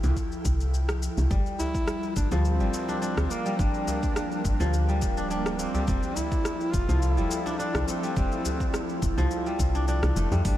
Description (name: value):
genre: organic downtempo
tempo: 105 BPM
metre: 4/4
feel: swing 54% on 16ths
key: unclear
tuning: A4 = 441 Hz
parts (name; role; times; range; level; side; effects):
- airy breathy pad; sustained chords; 0.0-10.6 s; F3 to G5; -34 LUFS; equal; chorus, sidechain pumping
- woody FM bass; bass; 0.0-10.5 s; D1 to F2; -25 LUFS; equal; sidechain pumping
- deep house drum kit; drums; 0.0-10.6 s; hi-hat, rim click, shaker; -36 LUFS; left 1 dB; overdrive, studio reverb
- djembe; percussion; 0.0-10.4 s; none; -36 LUFS; equal; none
- electronic kick drum; drums; 0.2-10.6 s; none; -29 LUFS; equal; overdrive, studio reverb
- kora; arpeggios; 1.3-10.6 s; F3 to D4; -32 LUFS; left 1 dB; analog delay
- mellow duduk; melody; 1.6-10.6 s; Bb3 to F4; -33 LUFS; equal; tape echo
room: moderate huge ambient reverb, RT60 9.0 s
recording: dreamy mix soaked in reverb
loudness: -24 LUFS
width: side -13 dB against mid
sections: 0.0-10.6 A section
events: kick drops out 0.7-1.3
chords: 0.0 Fmaj9; 1.3 Gm7; 5.9 Fmaj9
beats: 0.17 0.74 | 1.31 1.88 2.45 3.02 | 3.59 4.17 4.74 5.31 | 5.88 6.45 7.02 7.59 | 8.16 8.74 9.31 9.88 | 10.45